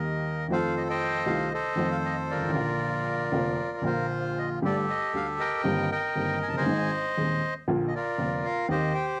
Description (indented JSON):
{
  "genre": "tango",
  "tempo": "117 BPM",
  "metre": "4/4",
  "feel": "rubato",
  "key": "Bb major, G minor from 4.6 s",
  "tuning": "A4 = 440 Hz",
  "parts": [
    { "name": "bandoneon", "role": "melody", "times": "0.0-9.2 s", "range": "F4 to A5", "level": "-30 LUFS", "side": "equal", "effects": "cassette tape" },
    { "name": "dark upright piano", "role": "accompaniment", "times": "0.0-8.9 s", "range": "Eb1 to Ab4", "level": "-31 LUFS", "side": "equal", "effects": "cassette tape" }
  ],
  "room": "moderate studio reverb, RT60 0.6 s",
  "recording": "home recording on cassette",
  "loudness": "-28 LUFS",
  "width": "mono",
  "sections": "0.0-4.6 A section; 4.6-9.2 B section",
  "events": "none",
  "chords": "0.0 Eb; 0.5 F7; 2.5 Bb; 4.6 Gsus2; 5.6 Cm7/G; 6.7 Ab; 7.7 Bb; 8.7 Eb6"
}